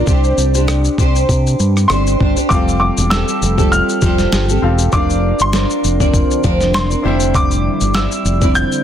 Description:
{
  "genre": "acoustic pop",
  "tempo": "99 BPM",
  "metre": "4/4",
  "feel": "swing 55% on 16ths",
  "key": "F major",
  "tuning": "A4 = 440 Hz",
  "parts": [
    { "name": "dark upright piano", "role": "melody", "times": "0.0-8.8 s", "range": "D5 to G6", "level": "-20 LUFS", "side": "equal", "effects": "none" },
    { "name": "fingerpicked plugged-in steel-string acoustic guitar", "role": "accompaniment", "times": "0.0-8.8 s", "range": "D3 to D5", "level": "-17 LUFS", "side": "equal", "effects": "double-tracked left and right" },
    { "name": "fingered electric bass", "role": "bass", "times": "0.0-8.6 s", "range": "E1 to C3", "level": "-16 LUFS", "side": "equal", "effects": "none" },
    { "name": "dusty soul sampler-style drum kit", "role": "drums", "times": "0.1-8.8 s", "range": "kick drum, rim click, shaker, snare drum", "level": "-17 LUFS", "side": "equal", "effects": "overdrive" },
    { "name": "clear concert grand piano", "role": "accompaniment", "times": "2.5-8.8 s", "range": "C4 to F5", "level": "-25 LUFS", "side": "left 4 dB", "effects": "none" }
  ],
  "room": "little or no reverb",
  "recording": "dense, heavily limited modern master",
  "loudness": "-12 LUFS",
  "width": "side -10 dB against mid",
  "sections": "0.0-2.5 A section; 2.5-8.8 B section",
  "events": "none",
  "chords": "0.1 Csus2; 2.5 Fadd9; 4.9 Bbadd9/F; 7.0 Cadd9/F",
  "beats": "| 0.08 0.68 1.29 1.90 | 2.51 3.11 3.72 4.32 | 4.93 5.54 6.14 6.74 | 7.35 7.95 8.55"
}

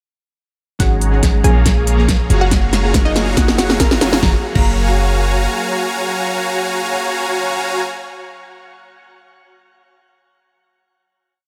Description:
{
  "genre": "future bass",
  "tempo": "140 BPM",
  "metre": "4/4",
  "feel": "half-time",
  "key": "F# major",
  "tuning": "A4 = 440 Hz",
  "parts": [
    { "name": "unison pluck", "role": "melody", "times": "0.8-7.8 s", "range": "D#4 to A#5", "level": "-27 LUFS", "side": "equal", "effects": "sidechain pumping, digital delay" },
    { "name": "glassy digital keys", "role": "accompaniment", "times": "0.8-7.8 s", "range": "E#3 to E#5", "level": "-27 LUFS", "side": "equal", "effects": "chorus, sidechain pumping, tape echo" },
    { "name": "airy breathy pad", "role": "sustained chords", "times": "0.8-7.5 s", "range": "F#3 to E#5", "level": "-34 LUFS", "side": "equal", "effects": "none" },
    { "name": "supersaw chords", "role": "riff", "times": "0.8-7.8 s", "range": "G#3 to A#5", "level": "-22 LUFS", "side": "equal", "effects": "sidechain pumping, low-pass filter, tape echo" },
    { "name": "warm 808-style bass", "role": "bass", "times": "0.8-5.5 s", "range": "F#1 to A#1", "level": "-19 LUFS", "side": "equal", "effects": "sidechain pumping" },
    { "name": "big-room dance drum kit", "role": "drums", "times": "0.8-4.7 s", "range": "crash cymbal, hi-hat, snare drum", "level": "-21 LUFS", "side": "equal", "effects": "none" },
    { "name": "electronic kick drum", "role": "drums", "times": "0.8-4.7 s", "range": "none", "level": "-19 LUFS", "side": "equal", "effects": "none" },
    { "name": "riser", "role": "sound effects", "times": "2.2-4.2 s", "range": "none", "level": "-32 LUFS", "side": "equal", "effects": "none" }
  ],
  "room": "light reverb, digital ambience",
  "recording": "none",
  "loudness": "-15 LUFS",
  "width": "mono",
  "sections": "0.8-4.2 build; 4.2-7.7 final chord",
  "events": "build-up 0.8-4.2; drum fill 0.8-4.2; filter sweep on supersaw synth 0.8-4.2",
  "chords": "0.8 G#7sus4; 1.4 A#m7; 2.3 F#maj9",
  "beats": "| 0.80 1.23 1.66 2.08 | 2.51 2.94 3.37 3.80 | 4.23 4.66 5.08 5.51 | 5.94 6.37 6.80 7.23"
}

